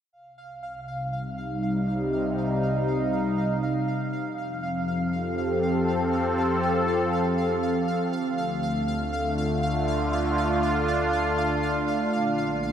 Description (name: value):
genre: ambient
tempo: free time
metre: none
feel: none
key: C dorian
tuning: A4 = 440 Hz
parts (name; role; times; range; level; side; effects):
- sweeping resonant pad; sustained chords; 0.9-12.7 s; Bb2 to A4; -24 LUFS; equal; chorus
- warm sub bass; bass; 0.1-12.7 s; Bb1 to F2; -37 LUFS; equal; none
- pulsing gated texture; texture; 0.1-12.7 s; F5; -32 LUFS; right 2 dB; chorus, built-in reverb
room: wet huge ambient reverb, RT60 6.9 s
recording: none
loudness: -23 LUFS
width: side -9 dB against mid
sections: 0.1-12.7 A section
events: fade-in on sub bass 0.1-12.7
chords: 0.1 Cm; 4.1 F; 8.1 Dm; 12.1 Bb